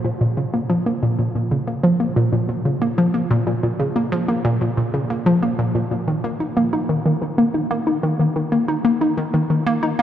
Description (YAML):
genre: ambient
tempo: 92 BPM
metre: 4/4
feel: straight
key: unclear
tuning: A4 = 440 Hz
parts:
  - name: hollow square pluck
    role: solo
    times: 0.0-10.0 s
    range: Bb2 to Eb4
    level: -17 LUFS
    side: equal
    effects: chorus, analog delay
room: wet cathedral reverb, RT60 5.8 s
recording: in a vast, echoing space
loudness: -17 LUFS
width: side -10 dB against mid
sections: 0.0-10.0 A section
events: none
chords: none